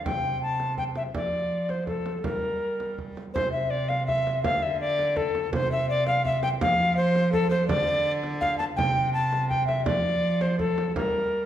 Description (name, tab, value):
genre	classical, renaissance-style consort dance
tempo	166 BPM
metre	3/4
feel	straight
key	unclear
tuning	A4 = 440 Hz
part	mellow alto recorder	melody	0.0-11.5 s	A4 to A5	-25 LUFS	left 1 dB	none
part	rich cello	bass	0.0-11.5 s	C3 to G3	-29 LUFS	right 2 dB	none
part	frame drum	percussion	0.1-11.1 s	none	-34 LUFS	right 3 dB	none
room	wet recital hall reverb, RT60 1.4 s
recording	minimal, uncompressed stereo recording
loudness	-23 LUFS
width	side -11 dB against mid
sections	0.0-3.3 A section; 3.3-11.5 A section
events	none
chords	0.1 C5; 1.1 F; 2.2 Gm; 3.3 C; 4.4 D5; 5.5 C; 6.6 F5; 7.7 N.C.; 8.8 C5; 9.9 F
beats	| 0.06 0.42 0.78 | 1.14 1.50 1.87 | 2.24 2.61 2.98 | 3.35 3.71 4.07 | 4.44 4.80 5.16 | 5.53 5.89 6.25 | 6.61 6.97 7.33 | 7.69 8.05 8.41 | 8.78 9.14 9.50 | 9.87 10.23 10.59 | 10.96 11.33